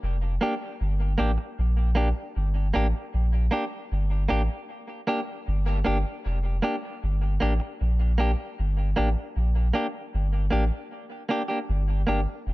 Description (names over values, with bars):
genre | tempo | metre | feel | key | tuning
dub reggae | 77 BPM | 4/4 | straight | G minor | A4 = 440 Hz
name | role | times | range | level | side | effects
warm sub bass | bass | 0.0-12.5 s | F1 to Bb1 | -23 LUFS | equal | none
clean electric guitar | accompaniment | 0.4-12.2 s | Bb3 to G4 | -29 LUFS | equal | dub echo
room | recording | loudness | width
little or no reverb | dark, warm production | -23 LUFS | side -19 dB against mid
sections
0.0-12.5 A section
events
none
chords
0.0 Gm